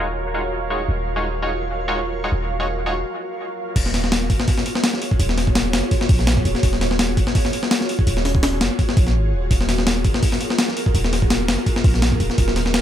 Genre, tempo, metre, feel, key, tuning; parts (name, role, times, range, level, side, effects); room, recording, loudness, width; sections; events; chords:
drum and bass, jungle; 167 BPM; 4/4; swing 54% on 16ths; Eb minor; A4 = 440 Hz
ethereal airy pad; sustained chords; 0.0-12.8 s; F4 to F5; -27 LUFS; right 1 dB; ensemble chorus, built-in reverb
band-passed chord stab; stabs; 0.0-2.9 s; Ab3 to Db5; -25 LUFS; equal; chorus, dub echo
warm 808-style bass; bass; 0.0-12.8 s; Eb1 to Bb1; -22 LUFS; equal
backwards swelling texture; texture; 0.0-3.1 s; Bb4 to Db5; -34 LUFS; right 5 dB; built-in reverb
breakbeat sampler-style drum kit; drums; 3.8-12.8 s; crash cymbal, hi-hat, kick drum, snare drum; -18 LUFS; left 1 dB; overdrive
little or no reverb; low-pass filter; -17 LUFS; side -10 dB against mid
0.0-3.8 A section; 3.8-12.8 B section
break 3.0-3.8; drop 3.8-12.8
0.0 Ebm11